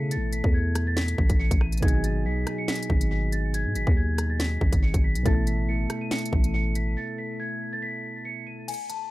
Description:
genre	hip hop, drill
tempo	140 BPM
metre	4/4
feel	half-time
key	unclear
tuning	A4 = 441 Hz
part	large celesta	melody	0.0-9.1 s	G#5 to D#7	-33 LUFS	left 1 dB	low-pass filter, tape echo
part	soft electric-piano-like synth keys	accompaniment	0.0-8.7 s	B2 to A4	-32 LUFS	right 1 dB	chorus, low-pass filter, tape echo
part	growling 808-style bass	bass	0.0-7.0 s	G#1 to C#3	-26 LUFS	equal	none
part	drill drum kit	drums	0.1-9.0 s	crash cymbal, hi-hat, kick drum, rim click, snare drum	-24 LUFS	equal	none
room	little or no reverb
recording	echo-heavy mix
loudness	-23 LUFS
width	side -17 dB against mid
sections	0.0-8.7 A section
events	break 7.0-8.7; kick muted 8.7-9.1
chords	0.0 Asus2; 1.8 G#m7; 5.3 Asus2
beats	| 0.11 0.54 0.97 1.40 | 1.83 2.25 2.68 3.11 | 3.54 3.97 4.40 4.83 | 5.25 5.68 6.11 6.54 | 6.97 7.40 7.83 8.25 | 8.68

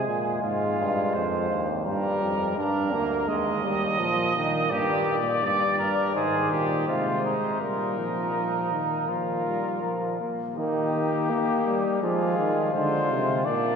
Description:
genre	classical, imitative canzona for brass ensemble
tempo	83 BPM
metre	4/4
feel	straight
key	Eb major from 4.7 s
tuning	A4 = 441 Hz
part	warm trumpet	second line	0.0-13.8 s	D4 to Eb5	-28 LUFS	right 2 dB	none
part	clear trombone	accompaniment	0.0-13.8 s	Eb3 to D4	-29 LUFS	right 1 dB	none
part	warm euphonium	bass	0.0-13.8 s	D2 to Bb3	-28 LUFS	equal	none
part	mellow trumpet	melody	4.7-13.8 s	G4 to D5	-29 LUFS	left 6 dB	none
room	wet cathedral reverb, RT60 5.2 s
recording	recorded in a church or concert hall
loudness	-23 LUFS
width	side -6 dB against mid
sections	0.0-10.6 A section; 10.6-13.8 B section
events	none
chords	0.4 Fm9; 1.9 Gm; 3.3 Eb; 4.7 Gm; 6.2 Ab; 7.6 Bbsus4; 9.1 Bb5; 10.6 Eb; 12.0 Fm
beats	0.43 1.15 | 1.86 2.57 3.28 4.00 | 4.71 5.43 6.15 6.88 | 7.61 8.35 9.09 9.83 | 10.57 11.30 12.02 12.74 | 13.46

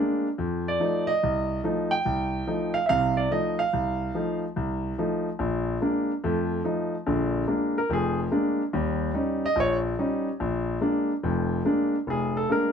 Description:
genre	solo jazz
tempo	144 BPM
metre	4/4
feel	swing 68% on 8ths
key	Bb major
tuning	A4 = 439 Hz
part	warm concert grand piano	solo	0.0-12.7 s	F1 to G5	-24 LUFS	equal	none
room	moderate small room ambience, RT60 0.5 s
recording	band playing live in one room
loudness	-24 LUFS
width	side -7 dB against mid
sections	0.0-7.1 A section; 7.1-12.7 B section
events	grand piano solo 7.1-12.7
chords	0.4 F7; 5.4 Bb7; 6.2 F7; 7.1 Bb7; 8.7 Eb7; 10.4 Bb7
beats	| 0.38 0.80 1.22 1.63 | 2.05 2.47 2.89 3.30 | 3.72 4.14 4.55 4.97 | 5.39 5.81 6.22 6.64 | 7.06 7.47 7.89 8.31 | 8.73 9.14 9.56 9.98 | 10.39 10.81 11.23 11.64 | 12.06 12.48

